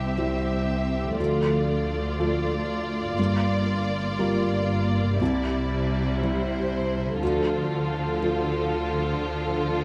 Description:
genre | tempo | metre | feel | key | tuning
cinematic | 60 BPM | 4/4 | rubato | D minor | A4 = 440 Hz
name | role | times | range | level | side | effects
warm symphonic violin section | melody | 0.0-9.8 s | A4 to E5 | -35 LUFS | equal | none
rich symphonic violin section | second line | 0.0-9.8 s | E4 to G4 | -35 LUFS | equal | none
felt-muted upright piano | accompaniment | 0.0-9.8 s | C2 to C5 | -31 LUFS | equal | none
warm symphonic viola section | accompaniment | 0.0-9.8 s | F3 to C4 | -36 LUFS | equal | none
concert harp | arpeggios | 0.0-9.8 s | G2 to C5 | -36 LUFS | equal | none
dark symphonic double bass section | bass | 0.0-9.8 s | G1 to D2 | -33 LUFS | equal | none
rich symphonic cello section | bass | 0.0-9.8 s | C2 to D3 | -33 LUFS | equal | none
room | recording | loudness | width
moderate scoring stage reverb, RT60 1.7 s | none | -25 LUFS | mono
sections
0.0-9.8 A section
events
none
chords
0.0 C; 1.2 Dm; 3.2 Gm7; 5.2 C; 7.2 Dm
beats
0.17 1.19 2.19 | 3.18 4.18 5.20 6.21 | 7.21 8.22 9.24

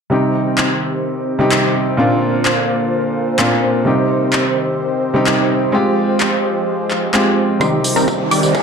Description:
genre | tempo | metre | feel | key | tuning
EDM, festival progressive house | 128 BPM | 4/4 | straight | C minor | A4 = 440 Hz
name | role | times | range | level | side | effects
clear concert grand piano | accompaniment | 0.1-8.6 s | Bb2 to G4 | -16 LUFS | equal | sidechain pumping, digital delay
lush unison pad | sustained chords | 0.1-8.6 s | D3 to C5 | -20 LUFS | right 1 dB | chorus, sidechain pumping
big-room dance drum kit | drums | 0.6-8.6 s | handclaps, hi-hat, tambourine | -19 LUFS | left 1 dB | high-pass filter on snare, high-pass filter on perc, high-pass filter on hats, high-pass filter on room
wide unison pluck | arpeggios | 7.6-8.6 s | Bb5 to D6 | -22 LUFS | equal | sidechain pumping, digital delay
supersaw stab | riff | 7.6-8.6 s | Eb3 to D5 | -16 LUFS | right 1 dB | sidechain pumping, low-pass filter, digital delay
electronic kick drum | drums | 7.6-8.6 s | none | -24 LUFS | left 1 dB | none
riser | sound effects | 7.8-8.6 s | none | -23 LUFS | right 1 dB | none
room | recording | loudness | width
wet digital room reverb, RT60 1.2 s, digital ambience | dark, warm production | -14 LUFS | side -6 dB against mid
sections
0.1-7.6 A section; 7.6-8.6 B section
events
filter sweep on analog synth pad 0.1-7.6; build-up 7.6-8.6; filter sweep on supersaw synth 7.6-8.6; filter sweep on synth pluck 7.6-8.6; riser 7.8-8.6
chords
0.1 Cm; 2.0 Bbadd9; 3.9 Cm; 5.7 Fmadd9; 7.6 Cm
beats
| 0.11 0.58 1.05 1.52 | 1.98 2.45 2.92 3.39 | 3.86 4.33 4.80 5.27 | 5.73 6.20 6.67 7.14 | 7.61 8.08 8.55

